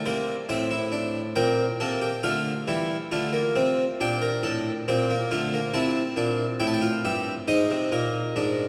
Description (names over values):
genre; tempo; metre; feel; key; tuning
classical, baroque-style 4-part fugue for harpsichord; 69 BPM; 4/4; straight; unclear; A4 = 440 Hz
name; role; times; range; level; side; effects
harpsichord; solo; 0.0-8.7 s; G2 to A5; -26 LUFS; equal; none
room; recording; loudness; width
wet church reverb, RT60 3.5 s; recorded in a church or concert hall; -26 LUFS; mono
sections
0.0-8.7 A section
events
none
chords
0.0 N.C.; 0.5 Am; 2.3 Dm; 4.0 Gm; 5.7 C; 7.5 Ab